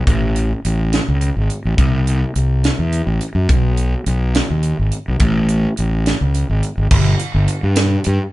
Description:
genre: math rock and midwest emo.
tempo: 70 BPM (dotted quarters).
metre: 6/8.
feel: straight.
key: unclear.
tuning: A4 = 440 Hz.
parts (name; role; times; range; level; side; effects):
fuzz fingered electric bass; bass; 0.0-8.2 s; G1 to G2; -15 LUFS; equal; overdrive.
crisp fusion drum kit; drums; 0.1-8.2 s; crash cymbal, hi-hat, kick drum, snare drum; -19 LUFS; equal; none.
room: light reverb.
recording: band playing live in one room, nothing above 10.9 kHz.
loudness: -14 LUFS.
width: side -17 dB against mid.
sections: 0.0-6.9 A section; 6.9-8.3 B section.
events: none.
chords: none.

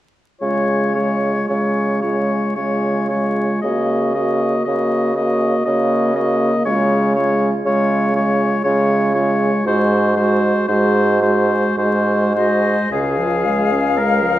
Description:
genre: classical, slow romantic movement for wind quintet.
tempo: 51-61 BPM.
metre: 3/4.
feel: rubato.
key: Db major.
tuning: A4 = 440 Hz.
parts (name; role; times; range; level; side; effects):
warm oboe; second line; 0.4-14.4 s; Ab4 to Eb5; -21 LUFS; left 2 dB; none.
warm French horn; accompaniment; 0.4-14.4 s; Db3 to Db4; -21 LUFS; equal; none.
warm clarinet; accompaniment; 0.4-14.4 s; F4 to Ab4; -23 LUFS; right 3 dB; none.
mellow bassoon; bass; 0.4-14.4 s; Db2 to Db3; -19 LUFS; right 1 dB; none.
silver concert flute; melody; 12.4-14.4 s; Eb5 to F5; -21 LUFS; left 8 dB; none.
room: wet recital hall reverb, RT60 1.6 s.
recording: vinyl crackle.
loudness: -15 LUFS.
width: side -14 dB against mid.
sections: 0.4-12.9 A section; 12.9-14.4 B section.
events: none.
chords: 0.4 Db; 3.6 Ebm7/Db; 6.7 Db; 9.7 Ab7; 12.9 Db.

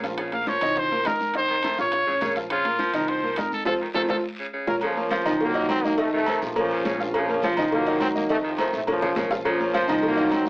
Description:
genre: latin, salsa.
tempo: 207 BPM.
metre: 4/4.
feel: straight.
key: Bb harmonic minor.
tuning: A4 = 440 Hz.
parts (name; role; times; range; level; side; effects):
raspy baritone saxophone; second line; 0.0-10.4 s; Db3 to F3; -30 LUFS; equal; none.
bright upright piano; accompaniment; 0.0-10.5 s; Eb3 to F6; -26 LUFS; equal; none.
upright bass; bass; 0.0-10.5 s; A1 to F2; -38 LUFS; equal; none.
bongos and cowbell; percussion; 0.0-10.5 s; none; -31 LUFS; left 1 dB; none.
guiro; percussion; 0.0-10.5 s; none; -42 LUFS; left 1 dB; none.
timbales and agogo bells; percussion; 0.0-10.5 s; none; -32 LUFS; right 1 dB; none.
congas; percussion; 0.2-10.5 s; none; -38 LUFS; equal; none.
clear trumpet; melody; 0.3-4.8 s; F4 to F5; -24 LUFS; equal; none.
brilliant trombone section; melody; 4.8-10.5 s; A2 to C4; -26 LUFS; equal; none.
room: wet studio ambience, RT60 0.5 s.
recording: AM radio sound.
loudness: -21 LUFS.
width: side -24 dB against mid.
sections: 0.0-4.8 A section; 4.8-10.5 B section.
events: band accent 3.7-4.8; drum fill 4.0-4.8, 8.9-9.5.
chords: 0.0 Bbm; 0.8 Bbsus24/C; 1.3 F7; 1.9 Bbm; 3.1 Bbsus24/C; 3.7 F7; 4.3 Bbm; 5.4 Cm7b5; 6.0 F7; 6.6 Bbm; 7.7 Cm7b5; 8.3 F7; 8.9 Bbm.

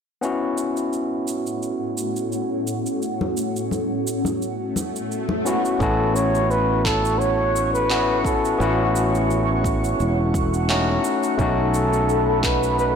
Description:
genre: sunset chillout.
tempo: 86 BPM.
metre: 4/4.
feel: swing 54% on 16ths.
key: A major.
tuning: A4 = 439 Hz.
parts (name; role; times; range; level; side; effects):
overdriven tine electric piano; accompaniment; 0.2-13.0 s; A3 to F#4; -24 LUFS; moving between left 4 dB and right 3 dB; auto-pan, low-pass filter, ping-pong delay.
shimmering ambient pad; sustained chords; 1.2-13.0 s; A2 to C#6; -27 LUFS; equal; chorus, built-in reverb, phaser.
electronic cabasa and handclaps; drums; 0.2-12.9 s; none; -30 LUFS; right 2 dB; studio reverb.
congas; percussion; 3.2-5.4 s; none; -29 LUFS; left 3 dB; none.
swell; sound effects; 4.7-5.8 s; none; -30 LUFS; right 2 dB; none.
breathy flugelhorn; melody; 5.5-12.9 s; F#4 to C#5; -23 LUFS; equal; ping-pong delay.
sustaining fretless electric bass; bass; 5.8-13.0 s; E1 to B1; -24 LUFS; right 1 dB; tube saturation, wide subtle chorus.
electronic kick drum; drums; 5.8-12.6 s; none; -26 LUFS; right 1 dB; studio reverb.
room: moderate plate reverb, RT60 2.1 s.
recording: blown-out, overdriven recording, overdrive.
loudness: -19 LUFS.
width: side -7 dB against mid.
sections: 0.2-5.8 A section; 5.8-13.0 B section.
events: filter sweep on tine electric piano 0.2-5.8; swell 4.7-5.8.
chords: 0.2 A6; 11.0 B7.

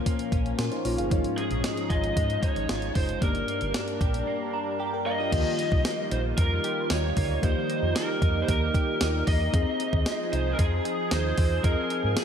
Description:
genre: 1980s-style pop.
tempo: 114 BPM.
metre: 4/4.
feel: straight.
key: unclear.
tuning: A4 = 440 Hz.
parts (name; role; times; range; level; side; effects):
FM electric piano with soft pad layer; accompaniment; 0.0-12.2 s; G2 to Bb5; -32 LUFS; left 2 dB; chorus, slapback echo.
phased analog pad; sustained chords; 0.0-12.2 s; F3 to Bb4; -34 LUFS; equal; phaser, chorus.
direct-recorded clean electric guitar; riff; 0.0-12.2 s; F3 to Ab4; -36 LUFS; right 6 dB; analog chorus, slapback echo.
clean 12-bit digital drum machine; drums; 0.1-12.2 s; crash cymbal, hi-hat, kick drum, snare drum, tambourine; -28 LUFS; equal; none.
hollow-body short-scale fingered electric bass; bass; 0.3-12.1 s; Gb1 to Bb2; -29 LUFS; equal; none.
lead guitar through a small cranked amp; melody; 1.4-12.2 s; Ab4 to Eb5; -31 LUFS; equal; overdrive, ping-pong delay, slapback echo.
room: moderate lush hall reverb, RT60 2.1 s.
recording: big arena sound.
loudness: -24 LUFS.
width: side -8 dB against mid.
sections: 0.0-5.3 A section; 5.3-12.2 B section.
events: FM electric piano fill 4.3-5.3.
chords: 0.0 Bbm; 1.1 Dbadd9/Ab; 3.2 Gm; 5.3 Ebadd9; 9.5 Fm7.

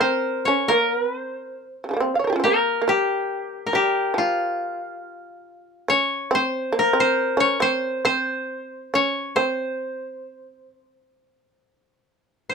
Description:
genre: japanese traditional, Japanese chamber music.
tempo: 62-71 BPM.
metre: 4/4.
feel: rubato.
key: C in sen.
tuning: A4 = 440 Hz.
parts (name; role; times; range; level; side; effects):
koto; melody; 0.0-12.5 s; F4 to Db5; -21 LUFS; left 1 dB; none.
shamisen; second line; 0.0-12.5 s; C3 to F5; -24 LUFS; right 2 dB; none.
room: light reverb.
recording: none.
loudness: -20 LUFS.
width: side -5 dB against mid.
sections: 0.0-12.5 A section.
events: none.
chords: none.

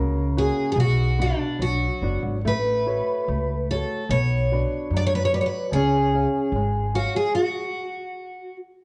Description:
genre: fado-style ballad.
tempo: 73 BPM.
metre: 2/4.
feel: rubato.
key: F# harmonic minor.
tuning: A4 = 439 Hz.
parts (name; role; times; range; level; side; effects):
picked twelve-string acoustic guitar; melody; 0.0-8.6 s; D4 to D5; -27 LUFS; equal; none.
flamenco guitar; accompaniment; 0.0-7.3 s; B2 to E#5; -31 LUFS; equal; none.
upright bass; bass; 0.0-7.1 s; F#1 to F#2; -26 LUFS; equal; none.
room: moderate recital hall reverb, RT60 1.5 s.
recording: worn, warbling old tape, cassette tape, warbly pitch drift, nothing above 10.4 kHz.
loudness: -23 LUFS.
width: mono.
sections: 0.0-8.8 A section.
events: stop 7.3-8.8.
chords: 0.0 F#/C#; 0.8 Bm; 2.5 F#m/A; 4.1 Bm; 5.7 C#; 7.3 N.C..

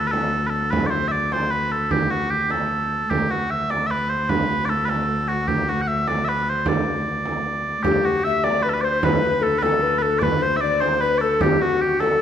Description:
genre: medieval dance.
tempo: 101 BPM (dotted quarters).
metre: 6/8.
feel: straight.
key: D mixolydian.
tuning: A4 = 441 Hz.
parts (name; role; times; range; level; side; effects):
mellow small bagpipes; melody; 0.0-12.2 s; F#4 to F#5; -22 LUFS; right 1 dB; none.
dark viola da gamba; drone; 0.0-12.2 s; D2; -27 LUFS; left 2 dB; none.
frame drum; percussion; 0.1-12.2 s; none; -26 LUFS; right 3 dB; none.
breathy mellow tenor recorder; second line; 7.8-12.2 s; F#4 to E5; -21 LUFS; left 4 dB; none.
room: wet recital hall reverb, RT60 1.8 s.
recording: none.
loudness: -19 LUFS.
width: side -9 dB against mid.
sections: 0.0-7.8 A section; 7.8-12.2 A section.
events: none.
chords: none.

